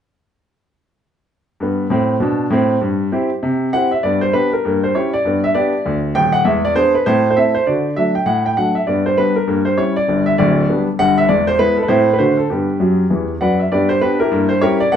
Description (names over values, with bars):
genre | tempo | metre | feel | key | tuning
jazz, stride piano | 198 BPM | 4/4 | swing 62% on 8ths | G major | A4 = 440 Hz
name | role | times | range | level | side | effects
warm baby grand piano | solo | 1.6-15.0 s | D1 to G5 | -14 LUFS | equal | none
room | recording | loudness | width
wet studio reverb, RT60 0.8 s | heard from further back in the room, nothing above 11.0 kHz | -14 LUFS | side -8 dB against mid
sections
1.6-4.0 A section; 4.0-13.7 B section; 13.7-15.0 B section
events
grand piano fill 12.8-13.7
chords
1.6 G; 2.8 C/G; 4.0 G; 4.6 Gdim7; 5.2 G; 6.5 E7; 7.1 Am; 7.7 D; 8.9 G; 9.5 Gdim7; 10.1 G; 11.3 E; 11.9 Am; 12.2 D7; 12.5 G; 14.3 Gdim7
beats
| 1.60 1.91 2.21 2.52 | 2.82 3.12 3.43 3.73 | 4.03 4.33 4.64 4.94 | 5.25 5.55 5.85 6.15 | 6.46 6.76 7.06 7.36 | 7.67 7.97 8.27 8.57 | 8.88 9.18 9.48 9.79 | 10.09 10.39 10.69 10.99 | 11.30 11.60 11.90 12.20 | 12.51 12.81 13.11 13.41 | 13.71 14.01 14.31 14.62 | 14.92